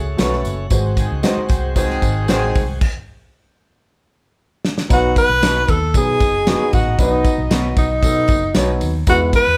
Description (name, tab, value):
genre	uptempo 1960s-style soul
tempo	115 BPM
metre	4/4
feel	straight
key	unclear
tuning	A4 = 441 Hz
part	breathy tenor saxophone	melody	0.0-0.4, 4.9-9.6 s	D#4 to B4	-20 LUFS	equal	none
part	overdriven tonewheel organ	sustained chords	0.0-2.8 s	G#3 to F#4	-35 LUFS	equal	slow rotary speaker
part	vintage muted fingered electric bass	bass	0.0-9.6 s	F#1 to B2	-24 LUFS	equal	none
part	dark upright piano	accompaniment	0.2-9.4 s	F#3 to C#5	-25 LUFS	equal	none
part	electric guitar through a small old amp	stabs	0.2-8.7 s	G#3 to C#5	-29 LUFS	equal	none
part	natural country drum kit	drums	0.2-9.5 s	crash cymbal, hi-hat, kick drum, ride cymbal, snare drum	-21 LUFS	equal	none
part	tambourine	percussion	0.2-9.5 s	none	-37 LUFS	equal	none
part	mellow horn section	second line	1.0-2.6, 5.9-8.8 s	D#3 to D#5	-28 LUFS	equal	none
room	moderate large studio reverb, RT60 0.9 s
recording	band playing live in one room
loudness	-17 LUFS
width	mono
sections	0.0-4.9 A section; 4.9-9.6 B section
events	stop 2.8-4.9; drum fill 4.4-4.9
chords	0.0 F#m; 0.7 G#7; 2.8 N.C.; 4.9 B